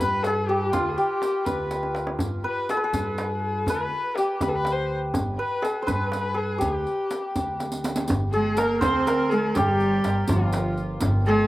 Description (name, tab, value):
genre	Persian modal ensemble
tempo	82 BPM (dotted quarters)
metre	6/8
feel	straight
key	G dastgah homayun, G dastgah shur from 8.1 s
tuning	A4 = 440 Hz
part	santur	melody	0.0-11.5 s	F4 to C5	-26 LUFS	equal	none
part	warm kamancheh	second line	0.0-11.5 s	F4 to C5	-29 LUFS	left 2 dB	none
part	upright bass	bass	0.0-11.5 s	G1 to G2	-28 LUFS	equal	none
part	riq	percussion	0.0-11.3 s	none	-34 LUFS	right 2 dB	none
part	tombak	percussion	0.2-11.1 s	none	-30 LUFS	equal	none
part	warm cello	second line	8.3-11.5 s	F3 to C4	-25 LUFS	right 2 dB	none
room	little or no reverb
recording	recorded outdoors, with no room sound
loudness	-22 LUFS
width	side -16 dB against mid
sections	0.0-8.1 A section; 8.1-11.5 B section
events	drum fill 1.7-2.2, 7.6-8.1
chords	none